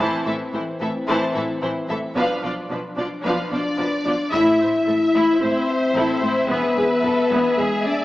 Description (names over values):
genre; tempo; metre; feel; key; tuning
cinematic, epic orchestral film score; 111 BPM; 4/4; straight; A harmonic minor; A4 = 440 Hz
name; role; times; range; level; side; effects
rich symphonic violin section; second line; 0.0-8.0 s; D4 to A5; -27 LUFS; left 1 dB; none
warm symphonic viola section; accompaniment; 0.0-8.0 s; E3 to E5; -24 LUFS; equal; none
mellow French horn section; sustained chords; 0.0-8.0 s; E3 to E4; -22 LUFS; left 2 dB; none
rich symphonic double bass section; bass; 0.0-7.7 s; E1 to B1; -36 LUFS; right 1 dB; none
warm symphonic cello section; bass; 0.0-7.7 s; E2 to B2; -30 LUFS; right 1 dB; none
warm symphonic violin section; melody; 3.5-8.0 s; G#4 to E5; -25 LUFS; left 1 dB; none
taiko ensemble; drums; 4.3-5.4 s; none; -45 LUFS; equal; none
room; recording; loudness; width
wet scoring stage reverb, RT60 1.9 s; small speaker sound; -18 LUFS; side -16 dB against mid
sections
0.0-4.3 A section; 4.3-8.0 B section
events
build-up 0.0-4.3; band accent 4.3-4.9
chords
0.0 Am; 2.2 Bdim; 4.3 Am; 6.5 E